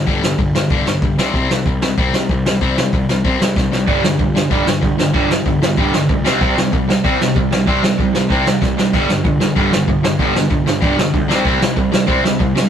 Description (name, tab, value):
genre	punk rock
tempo	190 BPM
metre	4/4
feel	straight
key	unclear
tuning	A4 = 439 Hz
part	distorted electric guitar	riff	0.0-12.7 s	G2 to C4	-18 LUFS	left 4 dB	overdrive
part	fuzz picked electric bass	bass	0.0-12.7 s	G1 to D2	-23 LUFS	equal	overdrive
part	vintage brush drum kit	drums	0.1-12.6 s	hi-hat, kick drum, snare drum, splash cymbal	-17 LUFS	equal	none
part	raw garage guitar	riff	3.9-12.7 s	G2 to C4	-19 LUFS	right 6 dB	overdrive
room	light reverb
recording	rough rehearsal-room recording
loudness	-13 LUFS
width	side -8 dB against mid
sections	0.0-12.7 A section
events	drum fill 3.6-3.9, 8.6-8.9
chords	0.0 G5; 1.2 C5; 3.9 G5; 6.3 C5; 8.9 G5; 11.3 C5